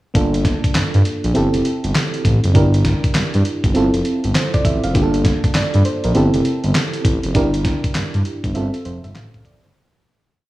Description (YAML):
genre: R&B, new jack swing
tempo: 100 BPM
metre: 4/4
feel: swing 63% on 16ths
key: G dorian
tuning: A4 = 442 Hz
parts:
  - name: FM electric piano with tremolo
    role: accompaniment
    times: 0.1-9.9 s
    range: Bb3 to F5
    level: -20 LUFS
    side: right 1 dB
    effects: none
  - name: dusty soul sampler-style drum kit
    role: drums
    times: 0.1-9.7 s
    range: handclaps, hi-hat, kick drum, snare drum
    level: -19 LUFS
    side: equal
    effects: none
  - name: smooth synth bass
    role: bass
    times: 0.2-9.7 s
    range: F1 to G2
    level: -18 LUFS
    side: equal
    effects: none
room: little or no reverb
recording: studio reverb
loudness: -15 LUFS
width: side -17 dB against mid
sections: 0.1-9.8 verse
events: fade-out 7.3-9.8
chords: 0.1 Gm9; 1.4 Fmaj7; 2.5 Gm6; 3.8 Fmaj13; 5.0 Gm9; 6.2 Fmaj7; 7.3 Gm6; 8.6 Fmaj13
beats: | 0.15 0.75 1.35 1.95 | 2.55 3.15 3.75 4.35 | 4.95 5.55 6.15 6.75 | 7.35 7.95 8.55 9.15